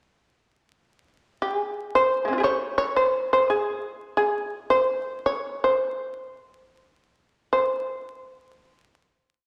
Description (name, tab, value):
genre	japanese traditional, Japanese chamber music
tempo	55-90 BPM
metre	2/4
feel	rubato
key	unclear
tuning	A4 = 438 Hz
part	shamisen	solo	1.4-9.5 s	Ab3 to Db5	-24 LUFS	equal	none
room	wet scoring stage reverb, RT60 1.6 s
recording	vinyl crackle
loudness	-25 LUFS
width	mono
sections	1.4-7.5 A section; 7.5-9.5 final note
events	slowing down 4.2-7.5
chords	none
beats	| 1.41 2.12 | 2.80 3.48 | 4.15 4.85 | 5.61 6.48 | 7.50 8.57